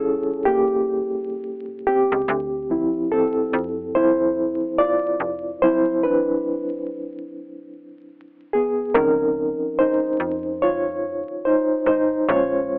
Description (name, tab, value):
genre	lo-fi hip hop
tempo	72 BPM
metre	4/4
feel	swing 61% on 16ths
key	unclear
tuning	A4 = 439 Hz
part	reed electric piano	accompaniment	0.0-12.8 s	F3 to D5	-19 LUFS	equal	fast tremolo, cassette tape, low-pass filter
part	slap-like FM bass	bass	0.0-12.8 s	F1 to F2	-28 LUFS	equal	none
room	wet small room reverb, RT60 0.6 s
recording	vinyl crackle, telephone sound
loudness	-18 LUFS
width	side -36 dB against mid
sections	0.0-12.8 A section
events	reed electric piano solo 0.0-12.8; break 5.6-8.9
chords	0.0 A7b13; 2.3 Dm9; 5.6 D13/F#; 8.9 Dbmaj9; 12.3 Bbm7